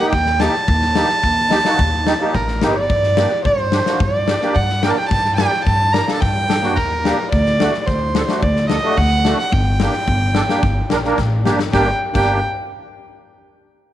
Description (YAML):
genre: klezmer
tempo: 109 BPM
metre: 4/4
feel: straight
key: G harmonic minor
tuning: A4 = 442 Hz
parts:
  - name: warm violin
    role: melody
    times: 0.0-12.4 s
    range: Bb4 to Bb5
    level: -19 LUFS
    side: right 2 dB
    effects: slapback echo
  - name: musette accordion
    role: accompaniment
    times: 0.0-12.4 s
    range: A3 to Bb4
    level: -21 LUFS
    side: right 1 dB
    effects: none
  - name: upright bass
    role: bass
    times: 0.1-12.4 s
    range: G1 to G2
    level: -20 LUFS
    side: equal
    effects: none
  - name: big rock drum kit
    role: drums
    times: 0.1-12.3 s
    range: crash cymbal, kick drum, snare drum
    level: -22 LUFS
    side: left 4 dB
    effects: none
room: light reverb, small room ambience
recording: 1960s-style stereo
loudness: -14 LUFS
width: side -12 dB against mid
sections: 0.0-11.7 A section; 11.7-13.9 B section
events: drum fill 11.2-11.7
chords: 0.0 Eb; 2.9 Gm; 7.3 D; 9.5 Gm